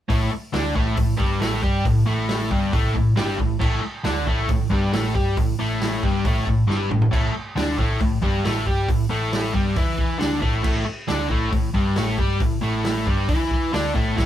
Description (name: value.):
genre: garage rock duo or trio.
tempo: 136 BPM.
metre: 4/4.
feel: straight.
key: unclear.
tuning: A4 = 440 Hz.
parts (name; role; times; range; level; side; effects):
overdriven electric guitar; riff; 0.1-14.3 s; G2 to G4; -22 LUFS; left 1 dB; none.
hollow-body short-scale picked electric bass; bass; 0.1-14.3 s; G1 to G2; -26 LUFS; equal; none.
vintage drum kit; drums; 0.1-14.3 s; crash cymbal, hi-hat, kick drum, snare drum, toms; -24 LUFS; equal; none.
room: light reverb.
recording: band playing live in one room.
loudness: -19 LUFS.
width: side -11 dB against mid.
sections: 0.1-14.2 A section.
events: drum fill 6.7-7.1.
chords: 0.1 A5.